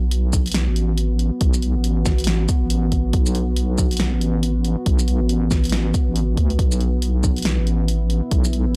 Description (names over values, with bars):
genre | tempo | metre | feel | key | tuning
deep dubstep | 139 BPM | 4/4 | swing 59% on 16ths, half-time | unclear | A4 = 439 Hz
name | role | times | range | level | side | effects
deep dark ambient pad | sustained chords | 0.0-8.8 s | B3 to F#4 | -29 LUFS | equal | chorus, built-in reverb
wobble bass | bass | 0.0-8.8 s | A1 to D2 | -22 LUFS | equal | chorus, transformer saturation
deep house drum kit | drums | 0.1-8.6 s | hi-hat, shaker, snare drum | -28 LUFS | equal | none
electronic kick drum | drums | 0.3-8.4 s | none | -22 LUFS | equal | none
room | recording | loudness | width
little or no reverb | dry, gritty hardware recording, transformer saturation | -20 LUFS | mono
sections
0.0-8.8 A section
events
none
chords
0.0 B5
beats
0.11 0.55 0.98 | 1.41 1.84 2.27 2.70 | 3.14 3.57 4.00 4.43 | 4.86 5.29 5.73 6.16 | 6.59 7.02 7.45 7.88 | 8.31 8.75